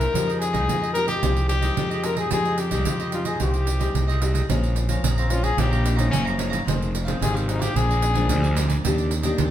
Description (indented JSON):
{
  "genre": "samba and choro",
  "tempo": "110 BPM",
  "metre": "4/4",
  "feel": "straight",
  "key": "F minor",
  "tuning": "A4 = 440 Hz",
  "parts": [
    { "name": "clear trumpet", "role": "melody", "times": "0.0-8.6 s", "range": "C4 to Bb4", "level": "-26 LUFS", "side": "left 3 dB", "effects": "none" },
    { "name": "cavaquinho", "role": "accompaniment", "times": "0.0-9.5 s", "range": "D4 to Bb5", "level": "-33 LUFS", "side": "right 3 dB", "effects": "none" },
    { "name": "nylon-string guitar", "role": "accompaniment", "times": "0.0-9.5 s", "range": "F2 to G4", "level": "-29 LUFS", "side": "left 3 dB", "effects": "none" },
    { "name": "fuzz fingered electric bass", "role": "bass", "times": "0.0-9.5 s", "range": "F1 to F2", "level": "-23 LUFS", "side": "equal", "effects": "overdrive" },
    { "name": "pandeiro", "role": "percussion", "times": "0.0-9.5 s", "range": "none", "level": "-28 LUFS", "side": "right 4 dB", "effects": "none" }
  ],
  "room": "wet studio reverb, RT60 0.7 s",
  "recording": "band playing live in one room",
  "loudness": "-20 LUFS",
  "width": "side -11 dB against mid",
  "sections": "0.0-4.5 A section; 4.5-9.5 B section",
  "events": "trumpet solo 4.5-9.5",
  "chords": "0.1 Fm9; 4.5 Bbm7; 6.7 Fm7; 7.8 Bb7; 8.8 Ebmaj7"
}